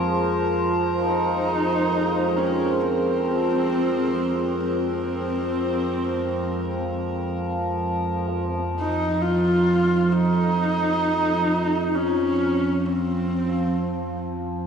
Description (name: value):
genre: dark ambient drone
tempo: free time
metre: none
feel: none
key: unclear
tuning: A4 = 442 Hz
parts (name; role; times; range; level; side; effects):
- deep dark ambient pad; sustained chords; 0.0-8.3 s; F4 to C5; -28 LUFS; equal; chorus, built-in reverb
- overtone-sweeping drone; drone; 0.0-14.7 s; F2 to F3; -24 LUFS; right 1 dB; chorus, built-in reverb
- metallic inharmonic drone; texture; 0.0-8.3 s; Bb4; -35 LUFS; right 3 dB; chorus, built-in reverb
- dark horsehead fiddle; melody; 1.0-14.2 s; C4 to F4; -24 LUFS; equal; analog delay
room: wet plate reverb, RT60 3.1 s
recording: dreamy mix soaked in reverb, cassette tape, studio reverb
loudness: -20 LUFS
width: side -6 dB against mid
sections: 0.0-8.3 A section; 8.3-14.7 B section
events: filter sweep on synth drone 8.3-14.7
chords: 0.0 Abadd9/F; 8.3 N.C.